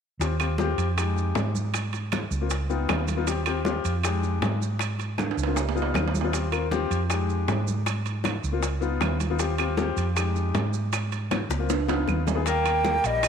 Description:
Afro-Cuban jazz; 157 BPM; 4/4; straight; Eb major; A4 = 443 Hz
warm baby grand piano; accompaniment; 0.2-12.4 s; Ab3 to G5; -30 LUFS; left 8 dB
hollow-body short-scale fingered electric bass; bass; 0.2-13.3 s; Bb1 to Ab2; -27 LUFS; right 1 dB
bongos; percussion; 0.2-13.3 s; -34 LUFS; left 10 dB
congas; percussion; 0.2-13.3 s; -34 LUFS; right 1 dB
maracas; percussion; 0.2-13.3 s; -40 LUFS; right 15 dB
timbales; percussion; 0.2-13.3 s; -33 LUFS; right 12 dB
claves; percussion; 0.4-13.3 s; -37 LUFS; right 12 dB
breathy concert flute; melody; 12.5-13.3 s; Eb5 to G5; -23 LUFS; right 2 dB
bright tenor saxophone; second line; 12.5-13.3 s; G3 to Bb3; -27 LUFS; left 8 dB
moderate echo chamber reverb, RT60 2.7 s; 1960s-style stereo with parts hard left and right; -23 LUFS; side -7 dB against mid
0.2-12.5 A section
grand piano fill 2.5-3.3; drum fill 5.2-6.3, 11.3-12.5
0.2 Eb69; 1.0 Fm7; 1.7 Absus2; 2.5 Db7; 3.3 Eb69; 4.0 Fm7; 4.8 Ab69; 5.6 Db7; 6.3 Eb69; 7.1 Fm7; 7.9 Ab69; 8.6 Db7; 9.4 Eb69; 10.2 Fm7; 10.9 Ab69; 11.7 Db7; 12.5 Eb
| 0.20 0.59 0.97 1.35 | 1.74 2.12 2.50 2.89 | 3.27 3.65 4.04 4.42 | 4.80 5.19 5.57 5.95 | 6.34 6.72 7.10 7.49 | 7.87 8.25 8.63 9.02 | 9.40 9.79 10.17 10.55 | 10.93 11.32 11.70 12.08 | 12.47 12.85 13.23

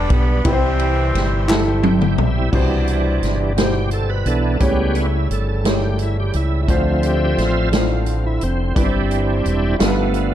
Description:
slow gospel; 58 BPM (dotted quarters); 6/8; straight; C major; A4 = 439 Hz
warm horn section; melody; 0.0-1.9 s; E3 to C4; -23 LUFS; right 1 dB; slapback echo
warm concert grand piano; accompaniment; 0.0-10.3 s; G2 to C#5; -23 LUFS; left 1 dB
bright tonewheel organ; sustained chords; 0.0-10.3 s; E3 to G5; -22 LUFS; right 2 dB; slow rotary speaker, overdrive, chorus vibrato
deep dub fingered electric bass; bass; 0.0-10.3 s; E1 to D2; -20 LUFS; equal
swinging big-band drum kit; drums; 0.1-10.3 s; crash cymbal, hi-hat, kick drum, ride cymbal, snare drum, toms; -21 LUFS; equal
group handclap; percussion; 1.5-1.8 s; -28 LUFS; left 4 dB
pedal harmonium; sustained chords; 2.5-10.3 s; C3 to C4; -31 LUFS; equal
light reverb; dark, warm production; -16 LUFS; side -11 dB against mid
0.0-2.5 A section; 2.5-10.3 B section
drum fill 1.5-2.5; tonewheel organ fill 1.5-2.5; tonewheel organ solo 2.5-10.3
0.5 C; 2.5 Cmaj7; 4.6 A7; 6.7 Dm7; 8.8 C/G; 9.8 G7
| 0.46 1.50 | 2.53 3.57 | 4.61 5.65 | 6.69 7.72 | 8.76 9.80

